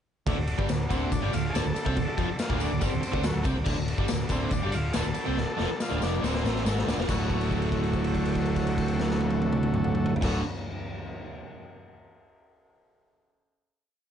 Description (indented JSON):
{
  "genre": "garage rock duo or trio",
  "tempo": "141 BPM",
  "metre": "4/4",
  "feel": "straight",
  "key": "D mixolydian",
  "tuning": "A4 = 440 Hz",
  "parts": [
    { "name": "combo organ", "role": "sustained chords", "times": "0.3-10.4 s", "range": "D4 to A4", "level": "-40 LUFS", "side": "left 2 dB", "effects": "none" },
    { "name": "biting overdriven guitar", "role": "riff", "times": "0.3-10.4 s", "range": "D2 to D4", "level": "-29 LUFS", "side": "right 2 dB", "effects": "none" },
    { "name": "fingered electric bass", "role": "bass", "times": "0.3-10.4 s", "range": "D1 to D2", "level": "-31 LUFS", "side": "equal", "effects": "overdrive" },
    { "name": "raw garage drum kit", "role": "drums", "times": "0.3-10.3 s", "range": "crash cymbal, kick drum, ride cymbal, snare drum, toms", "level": "-30 LUFS", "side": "left 1 dB", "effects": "none" },
    { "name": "tambourine", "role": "percussion", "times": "0.7-7.3 s", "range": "none", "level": "-44 LUFS", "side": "left 6 dB", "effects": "none" },
    { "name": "combo organ", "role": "melody", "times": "0.9-10.4 s", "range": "F#3 to A4", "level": "-32 LUFS", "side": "left 1 dB", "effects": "digital delay" }
  ],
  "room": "moderate small room reverb, RT60 0.6 s",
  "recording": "nothing above 10.4 kHz",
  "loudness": "-25 LUFS",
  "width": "side -9 dB against mid",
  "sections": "0.3-7.1 pre-chorus; 7.1-10.5 final chord",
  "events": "drum fill 5.4-7.1; held note 7.1-10.2",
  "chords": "0.3 D",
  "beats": "| 0.27 0.70 1.12 1.55 | 1.97 2.40 2.83 3.25 | 3.68 4.10 4.53 4.96 | 5.38 5.81 6.24 6.66 | 7.09 7.51 7.94 8.36 | 8.79 9.21 9.64 10.06"
}